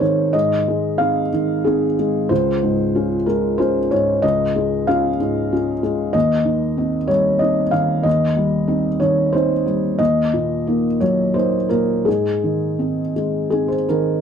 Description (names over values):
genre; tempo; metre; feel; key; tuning
neoclassical minimalist piano; 82-96 BPM; 3/4; rubato; Ab major; A4 = 441 Hz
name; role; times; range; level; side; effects
felt-muted upright piano; solo; 0.0-14.2 s; Db2 to F5; -16 LUFS; equal; none
room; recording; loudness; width
light reverb; dark, warm production; -16 LUFS; side -7 dB against mid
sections
0.0-14.2 A section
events
none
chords
0.0 Ab; 2.3 Dbmaj7; 6.1 Cm/Eb; 10.0 Ebm; 12.1 Ab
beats
| 0.34 0.99 1.65 | 2.30 2.95 3.59 | 4.23 4.88 5.52 | 6.15 6.78 7.42 | 8.06 8.70 9.33 | 9.99 10.66 11.35 | 12.06 12.79 13.52